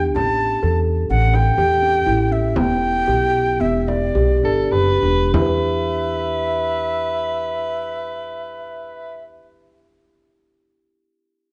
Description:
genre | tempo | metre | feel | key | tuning
contemporary instrumental, chamber music in an uneven meter | 95-126 BPM | 5/4 | straight | E dorian | A4 = 440 Hz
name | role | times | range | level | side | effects
breathy bright concert flute | melody | 0.0-9.2 s | D5 to A5 | -24 LUFS | equal | none
kalimba | arpeggios | 0.0-10.0 s | B3 to E5 | -23 LUFS | equal | none
upright bass | bass | 0.0-9.9 s | E1 to E2 | -24 LUFS | equal | none
frame drum | percussion | 0.2-5.6 s | none | -27 LUFS | equal | none
bright soprano saxophone | second line | 4.4-9.2 s | A4 to B4 | -27 LUFS | equal | none
room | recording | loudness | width
moderate recital hall reverb, RT60 1.5 s | worn, warbling old tape, cassette tape, warbly pitch drift, nothing above 10.3 kHz | -19 LUFS | mono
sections
0.0-5.3 A section; 5.3-8.5 B section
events
slowing down 1.1-5.3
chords
0.2 A7; 2.6 Em7; 5.3 Em

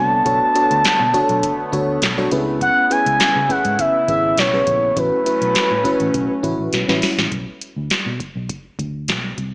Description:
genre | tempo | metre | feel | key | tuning
early-eighties boogie funk | 102 BPM | 4/4 | straight | B dorian | A4 = 439 Hz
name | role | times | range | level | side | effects
expressive synth lead | melody | 0.0-6.7 s | B4 to A5 | -16 LUFS | equal | chorus
FM electric piano with soft pad layer | accompaniment | 0.0-7.2 s | C#4 to C#5 | -22 LUFS | equal | chorus
chorused pulse-width pad | sustained chords | 0.0-7.3 s | C#3 to E4 | -26 LUFS | equal | none
vintage muted fingered electric bass | bass | 0.0-9.5 s | G#1 to C#3 | -25 LUFS | equal | none
booming analog drum machine | drums | 0.3-9.5 s | handclaps, hi-hat, kick drum, snare drum | -20 LUFS | equal | none
room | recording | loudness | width
light reverb, digital ambience | small speaker sound | -15 LUFS | side -27 dB against mid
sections
0.0-7.3 A section; 7.3-9.5 B section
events
drum fill 6.7-7.3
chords
0.0 Bm9; 2.3 C#m7; 5.0 A69; 7.3 Bm

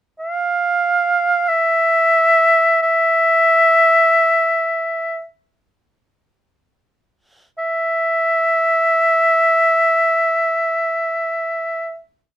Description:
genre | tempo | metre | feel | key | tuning
japanese traditional, Japanese chamber music | free time | none | none | unclear | A4 = 440 Hz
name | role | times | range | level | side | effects
bright oboe | solo | 0.2-12.0 s | E5 to F5 | -13 LUFS | equal | none
room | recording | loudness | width
little or no reverb | none | -13 LUFS | side -12 dB against mid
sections
0.0-7.6 free-time section; 7.6-12.4 final note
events
slowing down 3.1-7.6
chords
none

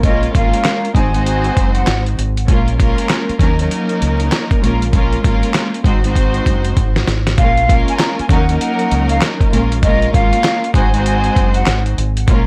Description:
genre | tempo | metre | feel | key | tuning
hip hop, boom-bap hip-hop | 98 BPM | 4/4 | swing 63% on 16ths | Bb minor | A4 = 439 Hz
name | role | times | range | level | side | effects
breathy concert flute | melody | 0.0-2.0, 7.4-11.8 s | Eb5 to Bb5 | -22 LUFS | equal | high-pass filter, low-pass filter
warm studio string section | accompaniment | 0.0-12.5 s | Gb3 to C5 | -21 LUFS | equal | cassette tape, high-pass filter, low-pass filter
deep dub fingered electric bass | bass | 0.0-12.5 s | Gb1 to Eb2 | -20 LUFS | equal | transformer saturation
dusty soul sampler-style drum kit | drums | 0.0-12.5 s | handclaps, hi-hat, kick drum, snare drum | -18 LUFS | equal | none
room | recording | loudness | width
little or no reverb | dry, gritty hardware recording, vinyl crackle | -15 LUFS | mono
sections
0.0-7.4 A section; 7.4-12.5 B section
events
drum fill 6.2-7.4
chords
0.0 Bbm7; 1.0 Ab7; 2.5 Bbm7; 3.4 Ebm7; 4.6 Bbm7; 5.8 Ab7; 7.4 Bbm7; 8.3 Ebm7; 9.5 Bbm7; 10.7 Ab7

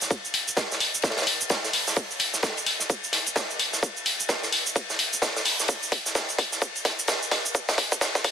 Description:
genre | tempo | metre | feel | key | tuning
bass house | 129 BPM | 4/4 | swing 60% on 16ths | none | none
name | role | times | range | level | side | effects
big rock drum kit | drums | 0.0-8.3 s | hi-hat, ride cymbal, snare drum | -28 LUFS | equal | sidechain pumping on cymbals, high-pass filter on cymbals, sidechain pumping on hats, high-pass filter on hats, high-pass filter on snare, high-pass filter on room
electronic cabasa and hi-hat | drums | 0.0-8.3 s | none | -26 LUFS | equal | high-pass filter on perc, high-pass filter on hats, high-pass filter on room
electronic kick drum | drums | 0.1-8.3 s | none | -25 LUFS | equal | high-pass filter on kick
room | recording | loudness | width
light reverb | high-pass filter | -23 LUFS | side -8 dB against mid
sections
0.0-8.3 A section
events
build-up 0.0-8.3; drum fill 2.0-8.3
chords
none

